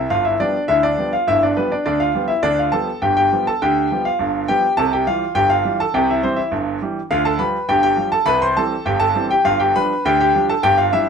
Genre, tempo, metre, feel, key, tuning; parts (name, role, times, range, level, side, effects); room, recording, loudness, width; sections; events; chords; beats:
ragtime piano; 102 BPM; 2/4; straight; A4 = 440 Hz
clear concert grand piano; solo; 0.0-11.1 s; G1 to C6; -15 LUFS; equal
moderate studio reverb, RT60 0.5 s; -15 LUFS; side -6 dB against mid
0.0-11.1 A section
0.1 G7; 4.8 C; 7.1 G7/D; 8.3 C; 9.5 G7
| 0.10 0.68 | 1.27 1.85 | 2.44 3.03 | 3.61 4.20 | 4.78 5.37 | 5.95 6.54 | 7.12 7.71 | 8.30 8.88 | 9.47 10.06 | 10.64